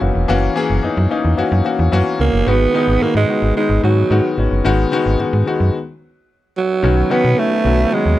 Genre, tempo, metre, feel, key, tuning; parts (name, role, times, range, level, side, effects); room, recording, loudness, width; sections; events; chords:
1980s-style pop; 110 BPM; 4/4; straight; A4 = 441 Hz
breathy alto saxophone; melody; 0.0-8.2 s; F#3 to B3; -18 LUFS; right 4 dB; tape echo
warm grand piano; accompaniment; 0.0-8.2 s; D#3 to G#4; -18 LUFS; left 4 dB
slap-like FM bass; bass; 0.0-8.2 s; E1 to B2; -16 LUFS; equal
light reverb; dry, close 1970s-style studio recording; -13 LUFS; side -14 dB against mid
0.0-6.8 A section; 6.8-8.2 B section
stop 5.7-6.8
0.0 F#7; 2.5 G#m7; 6.8 Badd9